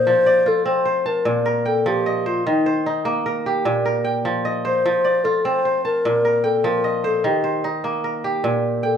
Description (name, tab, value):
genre	west african traditional, West African string and xylophone music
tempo	100 BPM (dotted quarters)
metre	12/8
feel	straight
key	F mixolydian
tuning	A4 = 443 Hz
part	breathy mellow alto flute	melody	0.0-9.0 s	Eb4 to C5	-19 LUFS	left 2 dB	none
part	kora	arpeggios	0.0-9.0 s	Bb2 to A5	-21 LUFS	right 2 dB	none
room	moderate recital hall reverb, RT60 1.4 s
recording	minimal, uncompressed stereo recording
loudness	-18 LUFS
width	side -8 dB against mid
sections	0.1-9.0 A section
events	none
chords	0.1 F; 1.3 Bb5; 2.5 Eb; 3.7 Bb5; 4.8 F; 6.0 Bb5; 7.2 Eb; 8.4 Bb5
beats	| 0.07 0.67 1.26 1.86 | 2.46 3.06 3.65 4.25 | 4.85 5.45 6.04 6.64 | 7.24 7.84 8.44